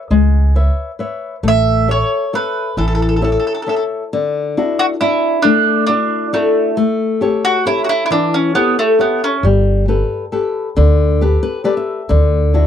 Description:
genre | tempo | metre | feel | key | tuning
italian folk, Italian serenade | 135 BPM | 3/4 | straight | A major, D major from 4.1 s | A4 = 442 Hz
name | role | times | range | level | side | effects
flamenco guitar | accompaniment | 0.0-12.7 s | D3 to E5 | -17 LUFS | left 4 dB | none
upright bass | bass | 0.1-3.4, 9.4-12.7 s | G1 to D2 | -13 LUFS | right 1 dB | none
mandolin | melody | 1.5-9.4 s | A3 to E5 | -15 LUFS | right 2 dB | none
room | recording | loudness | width
light reverb | dry, close 1970s-style studio recording | -13 LUFS | side -9 dB against mid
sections
0.0-4.1 A section; 4.1-12.7 B section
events
nylon-string guitar fill 11.2-12.1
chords
0.0 C#m7; 1.4 A; 4.1 Dadd9; 6.8 A7; 9.4 Gadd9; 12.1 Dadd9

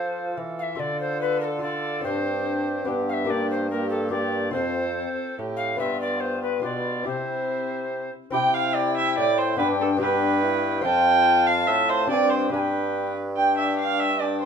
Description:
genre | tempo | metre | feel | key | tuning
classical, renaissance-style consort dance | 143 BPM | 3/4 | straight | unclear | A4 = 440 Hz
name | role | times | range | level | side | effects
alto recorder | melody | 0.0-14.5 s | A4 to A5 | -28 LUFS | left 4 dB | none
rich viola | second line | 0.0-14.5 s | E4 to G5 | -25 LUFS | right 4 dB | none
lute | accompaniment | 0.0-14.5 s | F2 to F5 | -31 LUFS | left 3 dB | none
warm trombone | accompaniment | 0.0-14.5 s | Bb3 to F4 | -31 LUFS | left 3 dB | none
clear bassoon | bass | 0.0-14.5 s | F2 to F3 | -29 LUFS | right 2 dB | none
room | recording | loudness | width
light reverb | minimal, uncompressed stereo recording | -21 LUFS | side -6 dB against mid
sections
0.0-8.3 A section; 8.3-14.5 B section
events
none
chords
0.0 F; 0.8 Dm; 2.0 Gsus4; 2.9 G; 3.3 Gm; 4.5 F; 5.8 G7; 7.1 C; 9.6 G; 10.8 F; 12.1 Gsus4; 12.5 G

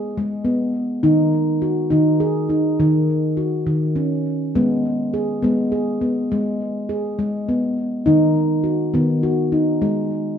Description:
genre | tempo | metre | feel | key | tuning
world meditative, meditative tuned percussion | 68 BPM (dotted quarters) | 6/8 | straight | G# minor pentatonic | A4 = 440 Hz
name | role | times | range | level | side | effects
handpan | solo | 0.0-10.4 s | D#3 to G#4 | -17 LUFS | equal | diffuse ambient delay
room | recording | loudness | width
wet echo chamber reverb, RT60 1.4 s | none | -17 LUFS | side -8 dB against mid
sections
0.0-10.4 A section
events
none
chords
0.0 G#m; 1.0 D#m; 4.6 G#m; 8.1 D#m; 9.8 G#5

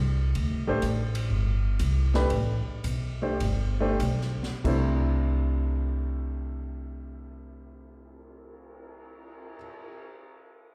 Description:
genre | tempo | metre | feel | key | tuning
jazz, small-group swing and bop | 90-128 BPM | 4/4 | swing 68% on 8ths | C major | A4 = 443 Hz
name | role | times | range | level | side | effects
upright bass | bass | 0.0-9.5 s | G1 to D2 | -29 LUFS | equal | none
open jazz drum kit | drums | 0.3-9.9 s | crash cymbal, cymbal swell, hi-hat, kick drum, ride cymbal, snare drum | -41 LUFS | equal | none
warm baby grand piano | accompaniment | 0.7-9.6 s | C3 to C5 | -33 LUFS | equal | slapback echo
room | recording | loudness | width
studio reverb | live gig heard through the venue's PA, recital hall reverb | -27 LUFS | mono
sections
0.0-4.6 A section; 4.6-10.0 B section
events
slowing down 0.4-4.6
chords
0.4 D5; 1.3 Gsus24; 2.3 A9sus4; 3.4 Gsus24; 4.6 C69

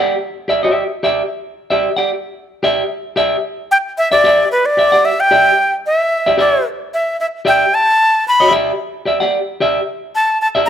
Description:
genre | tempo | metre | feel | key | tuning
funk | 112 BPM | 4/4 | straight | E minor | A4 = 440 Hz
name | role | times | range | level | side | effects
semi-hollow electric guitar | accompaniment | 0.0-10.7 s | G4 to F#5 | -16 LUFS | right 1 dB | none
breathy bright jazz flute | melody | 3.7-10.7 s | B4 to B5 | -12 LUFS | equal | none
room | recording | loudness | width
moderate large studio reverb, RT60 1.5 s, small room reverb | none | -12 LUFS | side -9 dB against mid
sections
0.0-3.2 A section; 3.2-10.7 B section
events
flute solo 3.2-10.7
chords
0.0 Em7

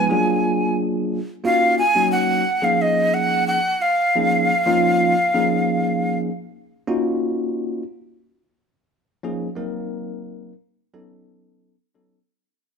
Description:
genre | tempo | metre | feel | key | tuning
jazz | 89 BPM | 4/4 | straight | Eb minor | A4 = 442 Hz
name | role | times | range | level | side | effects
breathy bright jazz flute | melody | 0.0-6.2 s | Eb5 to Ab5 | -18 LUFS | equal | none
bell-like tine electric piano | accompaniment | 0.0-12.2 s | F3 to Bb4 | -21 LUFS | equal | medium stereo tremolo
room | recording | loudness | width
moderate large studio reverb, RT60 1.1 s | band playing live in one room | -18 LUFS | side -6 dB against mid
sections
0.0-6.9 A section; 6.9-12.3 B section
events
fade-out 6.9-12.3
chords
0.1 Bb7b13; 1.5 Ebm9; 9.6 Cm7b5; 10.9 B9

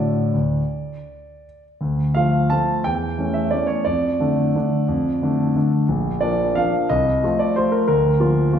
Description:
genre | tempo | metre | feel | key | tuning
classical, piano waltz | 154-193 BPM | 3/4 | rubato | D minor | A4 = 440 Hz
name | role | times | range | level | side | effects
warm concert grand piano | solo | 0.0-8.6 s | Bb1 to A5 | -18 LUFS | equal | none
room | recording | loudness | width
wet recital hall reverb, RT60 1.4 s | heard from further back in the room | -17 LUFS | side -8 dB against mid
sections
0.0-1.8 A section; 1.8-8.6 B section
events
none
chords
0.0 D; 1.8 Dm; 2.9 A7/E; 3.9 Dm/F; 5.9 Bb; 6.9 F7/C; 7.9 Bb/D

